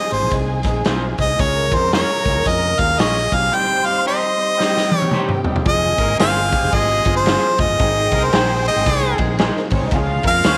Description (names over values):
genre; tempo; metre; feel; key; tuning
uptempo 1960s-style soul; 112 BPM; 4/4; swing 61% on 8ths; F minor; A4 = 440 Hz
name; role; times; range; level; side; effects
bright harmonica; melody; 0.0-10.6 s; C5 to G5; -20 LUFS; equal; none
warm symphonic violin section; second line; 0.0-10.6 s; G3 to C6; -29 LUFS; equal; none
warm upright piano; accompaniment; 0.0-10.6 s; Eb3 to Bb4; -28 LUFS; equal; none
fingered electric bass; bass; 0.1-10.6 s; F1 to F2; -25 LUFS; equal; none
raw garage drum kit; drums; 0.1-10.6 s; hi-hat, kick drum, ride cymbal, snare drum, toms; -23 LUFS; equal; none
electric guitar through a small old amp; stabs; 0.9-10.6 s; C4 to Db5; -30 LUFS; equal; vibrato effect
warm horn section; second line; 4.6-10.6 s; G3 to C5; -28 LUFS; equal; none
room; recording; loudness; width
light reverb, small room ambience; none; -17 LUFS; mono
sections
0.0-5.7 A section; 5.7-10.6 B section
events
harmonica solo 0.0-5.7; band accent 3.5-5.7; drum fill 4.6-5.7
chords
0.0 Ab; 1.4 Db; 3.5 Cm; 5.7 Fm; 7.8 Ab; 9.9 Db